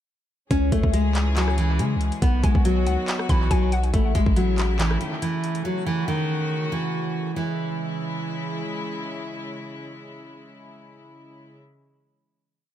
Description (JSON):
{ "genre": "hip hop, trap", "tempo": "140 BPM", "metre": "4/4", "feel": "half-time", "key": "C# minor", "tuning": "A4 = 440 Hz", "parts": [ { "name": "nylon-string guitar", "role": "melody", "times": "0.5-8.6 s", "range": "D#3 to C#4", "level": "-25 LUFS", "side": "equal", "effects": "analog delay" }, { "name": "warm studio string section", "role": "sustained chords", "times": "0.5-11.6 s", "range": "C#3 to G#4", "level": "-33 LUFS", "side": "left 2 dB", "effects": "none" }, { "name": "long sustained 808-style bass", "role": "bass", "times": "0.5-5.0 s", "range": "A1 to C#3", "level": "-22 LUFS", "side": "equal", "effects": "none" }, { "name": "trap drum kit", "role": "drums", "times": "0.5-5.6 s", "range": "handclaps, hi-hat, kick drum, rim click", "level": "-24 LUFS", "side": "equal", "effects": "vintage 12-bit sampler grit" }, { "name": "hollow square pluck", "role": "second line", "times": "2.4-3.9 s", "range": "F#5 to B5", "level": "-33 LUFS", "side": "left 3 dB", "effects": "chorus, analog delay" } ], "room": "digital ambience", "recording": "echo-heavy mix", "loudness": "-21 LUFS", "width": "side -11 dB against mid", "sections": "0.5-7.4 hook; 7.4-10.8 final chord", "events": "none", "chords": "0.5 C#m; 2.2 B; 3.9 A; 5.7 F#m; 7.4 C#m" }